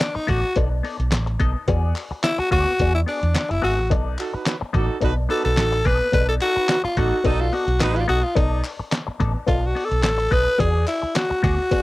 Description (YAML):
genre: funk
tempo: 108 BPM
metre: 4/4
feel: straight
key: B mixolydian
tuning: A4 = 441 Hz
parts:
  - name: growling tenor saxophone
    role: melody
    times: 0.0-11.8 s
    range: D4 to B4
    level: -22 LUFS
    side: left 1 dB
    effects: none
  - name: clean electric guitar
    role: accompaniment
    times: 0.0-11.8 s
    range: B3 to E5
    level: -28 LUFS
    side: left 5 dB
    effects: wah, spring reverb
  - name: trip hop sampler-style drum kit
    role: drums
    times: 0.0-11.8 s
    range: handclaps, hi-hat, kick drum, snare drum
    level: -24 LUFS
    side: equal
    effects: none
  - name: group handclap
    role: percussion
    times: 0.0-11.3 s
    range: none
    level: -34 LUFS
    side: left 4 dB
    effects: none
  - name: vintage muted fingered electric bass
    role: bass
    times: 0.2-11.6 s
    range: F#1 to E2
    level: -22 LUFS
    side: equal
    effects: none
  - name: warm horn section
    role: second line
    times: 4.2-8.0 s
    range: D#4 to B4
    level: -26 LUFS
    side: right 5 dB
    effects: none
room: little or no reverb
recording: dry, close 1970s-style studio recording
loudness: -18 LUFS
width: side -18 dB against mid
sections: 0.0-11.8 A section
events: tenor saxophone solo 0.0-11.8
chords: 0.0 B7#9; 1.7 E9; 3.9 B7#9; 10.6 E9